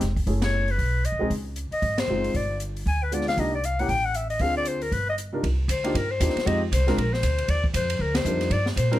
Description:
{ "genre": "jazz, small-group swing and bop", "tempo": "233 BPM", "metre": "4/4", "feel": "swing 60% on 8ths", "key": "C minor", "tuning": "A4 = 440 Hz", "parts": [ { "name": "upright bass", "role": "bass", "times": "0.0-9.0 s", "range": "F1 to Bb2", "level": "-26 LUFS", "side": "equal", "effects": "none" }, { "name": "open jazz drum kit", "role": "drums", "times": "0.0-9.0 s", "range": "hi-hat, kick drum, ride cymbal, snare drum", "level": "-31 LUFS", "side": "equal", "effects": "none" }, { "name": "warm baby grand piano", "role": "accompaniment", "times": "0.3-9.0 s", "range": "C3 to Bb4", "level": "-28 LUFS", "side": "right 1 dB", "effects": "none" }, { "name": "growling clarinet", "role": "melody", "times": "0.4-9.0 s", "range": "Bb4 to Ab5", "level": "-26 LUFS", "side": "left 3 dB", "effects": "none" } ], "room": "light reverb", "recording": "none", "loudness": "-22 LUFS", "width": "side -14 dB against mid", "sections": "0.0-5.4 A section; 5.4-9.0 B section", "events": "band accent 0.4, 2.0, 8.1", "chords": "0.3 F#m7; 0.8 Badd9; 1.3 Dbmaj9; 2.3 G7b9; 3.4 Cm7; 3.9 D#dim/A (rootless); 4.4 Dm7b5; 4.9 Gm7; 5.4 Cm11; 6.5 Fm7; 7.0 Bb; 7.5 Ebmaj9", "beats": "0.01 | 0.27 0.53 0.79 1.05 | 1.31 1.56 1.82 2.08 | 2.34 2.60 2.85 3.11 | 3.37 3.63 3.89 4.14 | 4.40 4.66 4.92 5.18 | 5.43 5.69 5.95 6.20 | 6.46 6.72 6.97 7.23 | 7.49 7.74 8.00 8.26 | 8.51 8.77" }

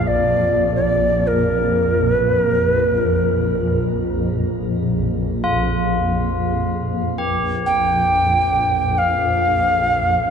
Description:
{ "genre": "world meditative, free-time meditation music", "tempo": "free time", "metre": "none", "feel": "none", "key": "Bb major pentatonic", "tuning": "A4 = 441 Hz", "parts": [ { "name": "Native American-style cedar flute", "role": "melody", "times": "0.0-10.3 s", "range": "Bb4 to G5", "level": "-18 LUFS", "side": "equal", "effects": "shimmer reverb" }, { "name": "swarming drone", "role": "drone", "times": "0.0-10.3 s", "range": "Bb1 to F2", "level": "-20 LUFS", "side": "equal", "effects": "built-in reverb" }, { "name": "tubular bells", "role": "texture", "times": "0.0-10.3 s", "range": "D4 to G4", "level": "-26 LUFS", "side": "left 1 dB", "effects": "shimmer reverb" } ], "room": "wet church reverb, RT60 3.3 s", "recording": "dark, warm production, nothing above 10.8 kHz", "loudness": "-16 LUFS", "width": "side -7 dB against mid", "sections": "0.0-6.6 A section; 6.6-10.3 A section", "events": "none", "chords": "none", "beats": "free time" }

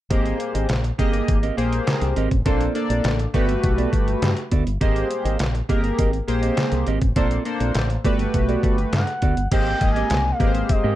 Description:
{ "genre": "early-eighties boogie funk", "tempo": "102 BPM", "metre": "4/4", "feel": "straight", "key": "unclear", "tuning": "A4 = 441 Hz", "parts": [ { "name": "chorused polysynth", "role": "accompaniment", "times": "0.1-11.0 s", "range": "A3 to Eb5", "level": "-24 LUFS", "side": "equal", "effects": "none" }, { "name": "mellow electric guitar", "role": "riff", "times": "0.1-11.0 s", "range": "B3 to Eb5", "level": "-27 LUFS", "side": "right 7 dB", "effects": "lush chorus" }, { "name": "fingered electric bass with an envelope filter", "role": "bass", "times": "0.1-10.9 s", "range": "G1 to Ab2", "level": "-23 LUFS", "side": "equal", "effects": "none" }, { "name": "detuned 8-bit digital drum machine", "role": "drums", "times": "0.1-10.8 s", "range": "crash cymbal, handclaps, hi-hat, kick drum, snare drum", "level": "-22 LUFS", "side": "equal", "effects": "none" }, { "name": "expressive synth lead", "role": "melody", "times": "8.9-11.0 s", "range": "Eb5 to Ab5", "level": "-25 LUFS", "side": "left 1 dB", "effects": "chorus" }, { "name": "chorused pulse-width pad", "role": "sustained chords", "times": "9.5-11.0 s", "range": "Ab3 to C4", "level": "-32 LUFS", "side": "equal", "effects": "none" } ], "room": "little or no reverb", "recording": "dark, warm production", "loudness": "-18 LUFS", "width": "side -14 dB against mid", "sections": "0.1-9.5 A section; 9.5-11.0 B section", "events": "none", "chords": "0.1 Abmaj9; 2.5 Bbmaj9; 3.3 Gmaj9; 4.8 Abmaj9; 7.2 Bbmaj9; 8.0 Gmaj9; 9.5 Abmaj9", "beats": "| 0.10 0.69 1.28 1.87 | 2.46 3.05 3.63 4.22 | 4.81 5.40 5.99 6.58 | 7.16 7.75 8.34 8.93 | 9.52 10.11 10.69" }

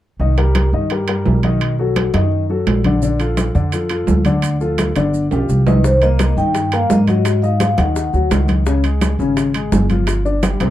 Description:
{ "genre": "Afro-Cuban jazz", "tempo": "170 BPM", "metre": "4/4", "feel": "straight", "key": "C dorian, C minor from 5.8 s", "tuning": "A4 = 441 Hz", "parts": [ { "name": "warm upright piano", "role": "accompaniment", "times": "0.2-10.7 s", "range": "C3 to Eb5", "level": "-20 LUFS", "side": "left 4 dB", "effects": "none" }, { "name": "upright bass", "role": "bass", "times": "0.2-10.7 s", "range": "G1 to Ab2", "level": "-17 LUFS", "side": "right 1 dB", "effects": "none" }, { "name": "congas", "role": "percussion", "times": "0.2-10.7 s", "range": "none", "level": "-22 LUFS", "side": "left 1 dB", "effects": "none" }, { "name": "timbales", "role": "percussion", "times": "0.4-10.7 s", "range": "none", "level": "-22 LUFS", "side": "right 4 dB", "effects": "none" }, { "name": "maracas", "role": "percussion", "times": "3.0-10.7 s", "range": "none", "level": "-37 LUFS", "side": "right 7 dB", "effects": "none" }, { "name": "vibraphone with soft mallets", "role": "melody", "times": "5.7-8.4 s", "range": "B4 to G5", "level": "-20 LUFS", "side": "equal", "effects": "none" }, { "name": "bongos", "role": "percussion", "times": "5.8-10.7 s", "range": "none", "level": "-27 LUFS", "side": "left 4 dB", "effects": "none" } ], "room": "moderate club reverb, RT60 0.5 s", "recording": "dark, warm production", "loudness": "-14 LUFS", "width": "side -13 dB against mid", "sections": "0.2-5.8 A section; 5.8-10.7 B section", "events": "drum fill 5.3-5.8", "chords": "0.2 Cm7; 1.6 B7; 3.0 Bbmaj7; 4.4 Dm; 5.1 G7; 5.8 Cm7; 7.3 Ab5; 8.7 Db; 10.1 G5", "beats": "| 0.20 0.55 0.91 1.26 | 1.61 1.96 2.32 2.67 | 3.02 3.38 3.73 4.08 | 4.43 4.79 5.14 5.49 | 5.84 6.20 6.55 6.90 | 7.25 7.61 7.96 8.31 | 8.66 9.02 9.37 9.72 | 10.07 10.43" }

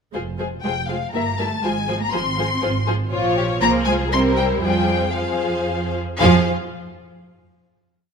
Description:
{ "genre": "quick classical-period movement for string orchestra", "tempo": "119 BPM", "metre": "3/4", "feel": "straight", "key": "F minor", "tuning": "A4 = 440 Hz", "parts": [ { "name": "warm symphonic violin section", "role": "second line", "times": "0.1-6.5 s", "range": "F4 to E5", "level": "-25 LUFS", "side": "left 4 dB", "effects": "none" }, { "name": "warm symphonic viola section", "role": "accompaniment", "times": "0.1-6.5 s", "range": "F3 to F4", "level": "-25 LUFS", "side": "right 1 dB", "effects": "none" }, { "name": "warm symphonic double bass section", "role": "bass", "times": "0.1-6.5 s", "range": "F1 to F2", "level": "-25 LUFS", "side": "right 3 dB", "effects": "none" }, { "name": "warm symphonic violin section", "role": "melody", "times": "0.6-6.5 s", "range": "F5 to C6", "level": "-24 LUFS", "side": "left 6 dB", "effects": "none" }, { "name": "warm symphonic cello section", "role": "bass", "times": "0.6-6.5 s", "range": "F3 to C4", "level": "-24 LUFS", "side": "right 5 dB", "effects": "none" } ], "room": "moderate scoring stage reverb, RT60 1.6 s", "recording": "none", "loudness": "-18 LUFS", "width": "side -6 dB against mid", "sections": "0.1-6.2 A section; 6.2-7.7 final chord", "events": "none", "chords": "0.1 Fm; 1.1 Edim/G; 1.6 Fm/Ab; 3.1 Bbm; 3.6 Fm/C; 4.1 C7; 4.6 Fm; 6.2 N.C.", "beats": "| 0.14 0.64 1.14 | 1.64 2.14 2.63 | 3.12 3.62 4.12 | 4.63 5.16 5.68 | 6.21" }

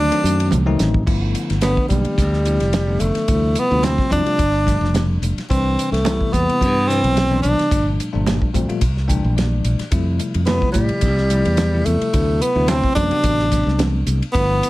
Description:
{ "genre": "electric jazz fusion", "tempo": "108 BPM", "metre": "4/4", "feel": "swing 54% on 16ths", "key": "G mixolydian", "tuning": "A4 = 444 Hz", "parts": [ { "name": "warm tenor saxophone", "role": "melody", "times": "0.0-14.7 s", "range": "G3 to D4", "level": "-19 LUFS", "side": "equal", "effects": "plate reverb" }, { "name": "bell-like tine electric piano", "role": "accompaniment", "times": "0.0-14.7 s", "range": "Bb2 to G5", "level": "-24 LUFS", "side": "left 3 dB", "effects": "medium stereo tremolo, plate reverb" }, { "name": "modern bright fingered electric bass", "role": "bass", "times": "0.0-14.6 s", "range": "F1 to A2", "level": "-19 LUFS", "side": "equal", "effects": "none" }, { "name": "damped 70s drum kit", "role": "drums", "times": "0.1-14.7 s", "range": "crash cymbal, hi-hat, kick drum, ride cymbal, snare drum, toms", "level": "-23 LUFS", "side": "equal", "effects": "none" }, { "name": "congas", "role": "percussion", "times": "0.2-14.4 s", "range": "none", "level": "-27 LUFS", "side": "right 5 dB", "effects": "none" } ], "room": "moderate studio reverb, RT60 0.7 s", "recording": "none", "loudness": "-16 LUFS", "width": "side -18 dB against mid", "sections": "0.0-1.1 A section; 1.1-14.7 B section", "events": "tenor saxophone solo 0.0-1.1; drum fill 0.5-1.1; tine electric piano fill 8.8-9.9", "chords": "0.0 D7b9; 1.1 G13; 3.3 Dm11; 4.4 G9; 5.5 Cmaj7; 7.7 Gm9; 8.8 C13; 9.9 Fmaj9; 12.1 D13", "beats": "0.52 | 1.07 1.62 2.18 2.73 | 3.28 3.84 4.39 4.94 | 5.50 6.05 6.60 7.16 | 7.71 8.26 8.82 9.37 | 9.92 10.47 11.03 11.58 | 12.13 12.68 13.24 13.79 | 14.34" }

